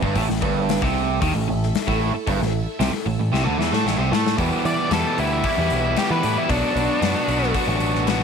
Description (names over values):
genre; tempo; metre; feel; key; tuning
classic rock; 114 BPM; 4/4; straight; E minor; A4 = 439 Hz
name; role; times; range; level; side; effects
biting overdriven guitar; riff; 0.0-8.2 s; E2 to G4; -24 LUFS; right 13 dB; none
crunchy overdriven guitar; riff; 0.0-8.2 s; E2 to G4; -26 LUFS; left 11 dB; none
picked electric bass; bass; 0.0-8.2 s; G1 to E3; -24 LUFS; right 1 dB; none
gated 80s drum kit; drums; 0.0-8.2 s; hi-hat, kick drum, snare drum; -26 LUFS; left 6 dB; none
phased string machine; sustained chords; 0.2-4.4 s; A3 to E5; -33 LUFS; equal; ensemble chorus, phaser
picked plugged-in steel-string acoustic guitar; accompaniment; 4.4-8.2 s; E2 to F#4; -32 LUFS; left 11 dB; none
octave-fuzz lead guitar; melody; 4.7-7.5 s; D4 to D5; -24 LUFS; left 2 dB; distortion
room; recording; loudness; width
light reverb, studio ambience; 1960s-style stereo with parts hard left and right; -18 LUFS; side -6 dB against mid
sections
0.0-4.4 A section; 4.4-8.2 B section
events
drum fill 3.3-4.4; lead electric guitar solo 4.4-8.2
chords
0.2 A5; 4.4 Em; 6.5 Bm